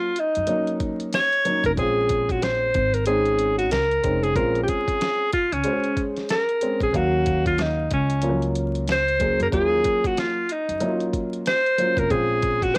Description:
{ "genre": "hip hop, jazz-hop", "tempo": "93 BPM", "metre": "4/4", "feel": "swing 60% on 16ths", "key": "Eb dorian", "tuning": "A4 = 439 Hz", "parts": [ { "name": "breathy alto saxophone", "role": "melody", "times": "0.0-12.8 s", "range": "Db4 to Db5", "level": "-24 LUFS", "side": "equal", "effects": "cassette tape" }, { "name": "dark grand piano", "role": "accompaniment", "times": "0.0-12.8 s", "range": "F3 to F5", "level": "-29 LUFS", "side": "equal", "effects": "none" }, { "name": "dusty soul sampler-style drum kit", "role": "drums", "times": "0.2-12.8 s", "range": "hi-hat, kick drum, snare drum", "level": "-32 LUFS", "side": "equal", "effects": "none" }, { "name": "upright bass", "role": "bass", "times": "0.4-12.8 s", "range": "F1 to Gb2", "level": "-29 LUFS", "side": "equal", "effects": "none" } ], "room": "small room ambience", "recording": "home recording on cassette, vinyl crackle", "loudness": "-22 LUFS", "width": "mono", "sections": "0.0-12.8 A section", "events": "none", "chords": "0.0 Ebm7; 1.8 Bbm7; 6.9 Ebm7; 12.1 Bbm7" }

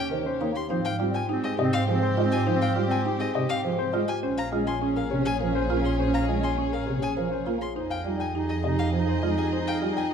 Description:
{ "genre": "classical, minimalist pattern music", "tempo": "102 BPM", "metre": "3/4", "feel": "straight", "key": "Ab major", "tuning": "A4 = 439 Hz", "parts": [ { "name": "dark baby grand piano", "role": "melody", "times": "0.0-10.1 s", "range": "G4 to Ab5", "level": "-31 LUFS", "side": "left 8 dB", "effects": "none" }, { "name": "warm clarinet", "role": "second line", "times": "0.0-10.1 s", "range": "C4 to Eb4", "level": "-30 LUFS", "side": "right 2 dB", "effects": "none" }, { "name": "warm studio violin section", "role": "sustained chords", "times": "0.0-10.1 s", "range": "G4 to Eb5", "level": "-35 LUFS", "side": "left 2 dB", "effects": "none" }, { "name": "rich violin", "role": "arpeggios", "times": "0.0-10.1 s", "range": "Eb5 to C6", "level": "-35 LUFS", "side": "left 4 dB", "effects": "none" }, { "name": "warm studio double bass section", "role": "bass", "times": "0.0-10.1 s", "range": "Bb1 to Ab2", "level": "-30 LUFS", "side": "right 2 dB", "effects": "none" }, { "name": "chamber organ, flutes", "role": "accompaniment", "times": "0.1-9.9 s", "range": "C3 to Bb3", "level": "-32 LUFS", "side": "equal", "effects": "none" }, { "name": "buzzing marimba with medium mallets", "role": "arpeggios", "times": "0.1-10.1 s", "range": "Db4 to C5", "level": "-32 LUFS", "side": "right 6 dB", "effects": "none" } ], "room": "moderate recital hall reverb, RT60 1.4 s", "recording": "dark, warm production", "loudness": "-23 LUFS", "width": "side -7 dB against mid", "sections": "0.0-10.1 A section", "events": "none", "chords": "0.0 Eb7; 0.7 Abmaj7; 4.2 Bbm7; 7.8 Fm7" }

